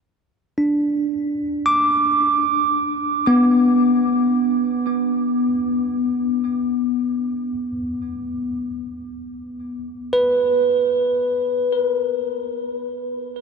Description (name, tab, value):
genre	ambient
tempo	free time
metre	none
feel	none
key	unclear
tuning	A4 = 440 Hz
part	bell-like tine electric piano	solo	0.6-13.4 s	B3 to D6	-18 LUFS	equal	ping-pong delay
room	wet huge ambient reverb, RT60 7.7 s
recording	dark, warm production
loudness	-18 LUFS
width	side -5 dB against mid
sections	0.0-13.4 A section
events	none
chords	0.0 N.C.; 1.1 Bm; 7.5 N.C.